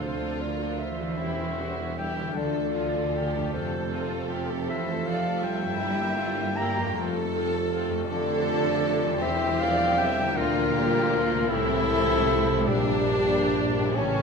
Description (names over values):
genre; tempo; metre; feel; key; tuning
classical, slow romantic movement for symphony orchestra; 52 BPM (dotted quarters); 6/8; rubato; D minor; A4 = 442 Hz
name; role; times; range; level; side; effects
dark chamber violin section; melody; 0.0-14.2 s; D4 to G5; -35 LUFS; left 2 dB; none
dark clarinet; second line; 0.0-14.2 s; G4 to Bb5; -28 LUFS; left 2 dB; none
warm chamber violin section; second line; 0.0-14.2 s; C#4 to A4; -33 LUFS; equal; none
rich studio viola section; accompaniment; 0.0-14.2 s; E3 to A4; -34 LUFS; right 4 dB; none
dark French horn section; sustained chords; 0.0-14.2 s; F3 to G4; -33 LUFS; left 4 dB; none
concert harp; arpeggios; 0.0-14.2 s; E2 to E5; -34 LUFS; left 8 dB; none
rich chamber double bass section; bass; 0.0-14.2 s; A1 to G2; -34 LUFS; right 3 dB; none
warm chamber cello section; bass; 0.0-14.2 s; G2 to Bb3; -33 LUFS; right 4 dB; none
warm tuba; bass; 0.0-14.2 s; E1 to D2; -34 LUFS; right 6 dB; none
room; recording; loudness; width
wet scoring stage reverb, RT60 1.8 s; none; -23 LUFS; side -5 dB against mid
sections
0.0-14.2 A section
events
none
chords
0.0 Dm; 1.2 C#dim/E; 2.4 Dm; 3.5 F; 5.8 Edim/G; 7.0 F; 8.1 Dm/F; 9.2 C/E; 10.4 Bb/D; 11.5 Am/C; 12.7 Gm/Bb